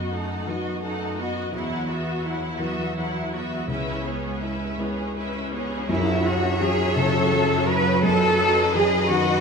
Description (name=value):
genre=cinematic, emotional film score for orchestra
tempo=56 BPM (dotted quarters)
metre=6/8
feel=rubato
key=F# minor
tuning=A4 = 435 Hz
part: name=rich studio violin section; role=second line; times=0.0-9.4 s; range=E4 to F#5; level=-30 LUFS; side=left 2 dB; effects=none
part: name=clear studio viola section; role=accompaniment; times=0.0-9.4 s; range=F#3 to F#4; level=-30 LUFS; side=right 2 dB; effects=none
part: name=felt-muted upright piano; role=accompaniment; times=0.0-9.4 s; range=C#2 to C#5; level=-27 LUFS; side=left 2 dB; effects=none
part: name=rich studio cello section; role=bass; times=0.0-9.4 s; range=C#2 to B4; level=-25 LUFS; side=right 1 dB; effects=none
part: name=cymbal swell and tam-tam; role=percussion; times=1.5-8.7 s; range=none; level=-31 LUFS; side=equal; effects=none
part: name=clear studio violin section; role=melody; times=5.9-9.4 s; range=D#5 to E5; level=-32 LUFS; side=left 3 dB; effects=none
part: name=rich studio double bass section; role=bass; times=5.9-9.4 s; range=F#2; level=-29 LUFS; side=right 3 dB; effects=none
room=moderate scoring stage reverb, RT60 1.9 s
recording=minimal, uncompressed stereo recording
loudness=-21 LUFS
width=side -5 dB against mid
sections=0.0-5.9 A section; 5.9-9.4 B section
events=band accent 5.9-6.6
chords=0.0 B7/F#; 1.5 Esus2; 3.7 C#m7; 5.9 F#m7; 8.0 B7/F#